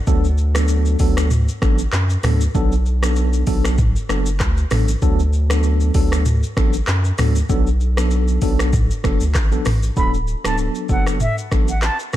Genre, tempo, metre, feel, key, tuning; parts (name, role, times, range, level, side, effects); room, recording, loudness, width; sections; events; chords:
afrobeats; 97 BPM; 4/4; swing 55% on 16ths; D major; A4 = 440 Hz
bright tine electric piano; accompaniment; 0.1-12.2 s; F#3 to A4; -24 LUFS; equal; medium stereo tremolo
saturated sub bass; bass; 0.1-11.9 s; D1 to F#2; -18 LUFS; equal
afro-pop drum kit; drums; 0.1-12.2 s; finger snaps, handclaps, hi-hat, kick drum, rim click, shaker, toms; -20 LUFS; equal; overdrive
concert flute; melody; 10.0-12.2 s; E5 to B5; -25 LUFS; right 1 dB; ping-pong delay
digital ambience; dark, warm production; -15 LUFS; side -13 dB against mid
0.0-10.0 A section; 10.0-12.2 B section
0.1 D6; 2.5 Bm7; 5.0 D6; 7.5 Bm7; 10.0 D6